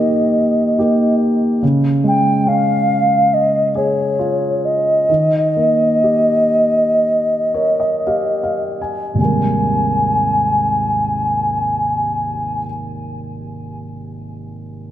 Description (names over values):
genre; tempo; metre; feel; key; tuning
pop; 52-72 BPM; 4/4; straight; Ab major; A4 = 441 Hz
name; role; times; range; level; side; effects
hollow alto ocarina; melody; 0.0-12.6 s; Db5 to Ab5; -16 LUFS; equal; none
dark baby grand piano; accompaniment; 0.0-14.9 s; Ab1 to Ab5; -18 LUFS; right 1 dB; none
room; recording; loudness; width
wet scoring stage reverb, RT60 1.5 s; none; -14 LUFS; side -12 dB against mid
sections
0.0-1.6 A section; 1.6-9.2 B section; 9.2-13.9 C section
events
slowing down 1.6-9.2; grand piano fill 7.0-9.2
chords
0.0 Eb; 1.6 Db; 5.1 Eb; 9.2 Abmaj9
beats
0.79 | 1.62 2.46 3.31 4.18 | 5.09 6.03 7.02 8.07 | 9.19 10.36 11.52 12.69